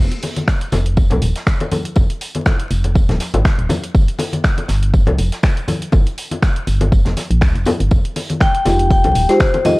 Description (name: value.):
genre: deep house.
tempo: 121 BPM.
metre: 4/4.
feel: swing 55% on 16ths.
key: F minor.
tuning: A4 = 438 Hz.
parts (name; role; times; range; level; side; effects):
organ-like FM bass; bass; 0.0-9.3 s; Eb1 to Db2; -17 LUFS; equal; sidechain pumping.
house drum kit; drums; 0.1-9.8 s; finger snaps, hi-hat; -26 LUFS; equal; none.
natural country drum kit; drums; 0.2-9.8 s; hi-hat, snare drum, tambourine; -33 LUFS; right 1 dB; sidechain pumping on hats, high-pass filter on hats, high-pass filter on snare, sidechain pumping on perc, high-pass filter on perc, high-pass filter on room.
congas; percussion; 0.2-9.8 s; none; -21 LUFS; left 2 dB; none.
electronic kick drum; drums; 0.5-9.5 s; none; -14 LUFS; equal; none.
vibraphone with medium hard mallets; melody; 8.4-9.8 s; C5 to G5; -16 LUFS; left 2 dB; analog delay.
deep mellow chord stab; stabs; 8.7-9.8 s; Ab3 to G4; -18 LUFS; equal; chorus, sidechain pumping.
room: small room ambience.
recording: dry, gritty hardware recording, vinyl crackle.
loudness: -14 LUFS.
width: side -22 dB against mid.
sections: 0.0-9.8 A section.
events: none.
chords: 0.0 F7(no3); 3.7 N.C.; 7.9 Fm9.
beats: 0.48 0.97 1.47 | 1.96 2.46 2.96 3.45 | 3.95 4.44 4.94 5.43 | 5.93 6.43 6.92 7.42 | 7.91 8.41 8.91 9.40.